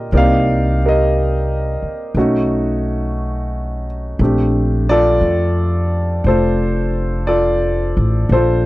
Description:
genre	jazz ballad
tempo	59 BPM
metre	4/4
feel	swing 67% on 8ths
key	Bb major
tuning	A4 = 440 Hz
part	warm concert grand piano	accompaniment	0.0-8.7 s	D3 to F5	-17 LUFS	equal	none
part	upright bass	bass	0.0-8.7 s	F1 to F2	-17 LUFS	equal	none
room	little or no reverb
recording	dry, close 1970s-style studio recording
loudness	-14 LUFS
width	side -17 dB against mid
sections	0.0-8.7 A section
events	none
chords	0.1 Cm9; 2.2 B9; 4.2 Bbmaj13

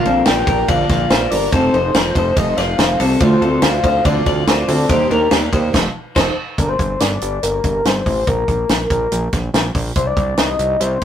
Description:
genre	jangly indie pop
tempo	142 BPM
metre	4/4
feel	straight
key	unclear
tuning	A4 = 439 Hz
part	soft octave-layered synth lead	melody	0.0-11.0 s	Bb4 to G5	-20 LUFS	left 3 dB	chorus
part	fingerpicked twelve-string acoustic guitar	accompaniment	0.0-6.3 s	Bb2 to Bb4	-24 LUFS	right 4 dB	none
part	twelve-string electric guitar	arpeggios	0.0-6.3 s	A3 to D5	-18 LUFS	left 1 dB	none
part	fat analog bass	bass	0.1-11.0 s	F1 to Eb2	-21 LUFS	right 1 dB	none
part	compact cocktail drum kit	drums	0.1-11.0 s	crash cymbal, hi-hat, kick drum, ride cymbal, snare drum	-18 LUFS	equal	none
room	wet studio ambience, RT60 0.5 s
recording	rough rehearsal-room recording, tube saturation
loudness	-14 LUFS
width	side -9 dB against mid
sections	0.0-6.6 A section; 6.6-11.0 B section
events	band accent 5.7-6.6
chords	0.0 Bb; 1.5 F7; 3.2 Dm7; 4.9 Ebmaj7; 5.7 F7; 6.6 Gm; 8.3 N.C.; 10.0 Cm

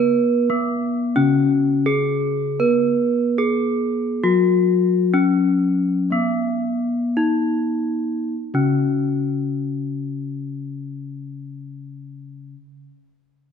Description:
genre	gamelan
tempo	49-89 BPM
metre	4/4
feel	straight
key	Db slendro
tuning	A4 = 440 Hz
part	gamelan-type bronze metallophone	melody	0.0-12.5 s	Cb4-45c to Cb5-45c	-20 LUFS	left 2 dB	none
part	gamelan-type bronze metallophone	accompaniment	0.0-12.5 s	Db3 to Cb4-45c	-22 LUFS	equal	none
room	wet recital hall reverb, RT60 1.8 s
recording	dark, warm production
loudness	-18 LUFS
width	side -7 dB against mid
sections	0.0-8.3 A section; 8.3-13.2 B section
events	slowing down 1.2-8.3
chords	none

